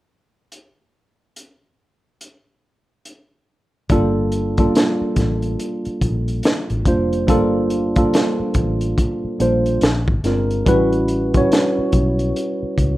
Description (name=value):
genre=R&B, neo-soul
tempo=71 BPM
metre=4/4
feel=swing 62% on 16ths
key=G dorian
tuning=A4 = 439 Hz
part: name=crunchy breakbeat drum kit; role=drums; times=0.5-13.0 s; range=hi-hat, kick drum, snare drum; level=-19 LUFS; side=equal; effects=none
part: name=tine electric piano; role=accompaniment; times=3.9-13.0 s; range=G3 to C#5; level=-18 LUFS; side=right 1 dB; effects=analog chorus
part: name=vintage muted fingered electric bass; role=bass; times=3.9-13.0 s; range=F1 to C#2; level=-22 LUFS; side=equal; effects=none
room=light reverb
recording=rough home demo mix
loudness=-16 LUFS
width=side -16 dB against mid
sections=0.5-3.9 A section; 3.9-13.0 B section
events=none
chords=0.5 N.C.; 3.9 Gm9; 9.8 Bb9; 10.7 A13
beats=| 0.52 1.36 2.21 3.05 | 3.90 4.74 5.59 6.43 | 7.28 8.12 8.97 9.81 | 10.66 11.51 12.35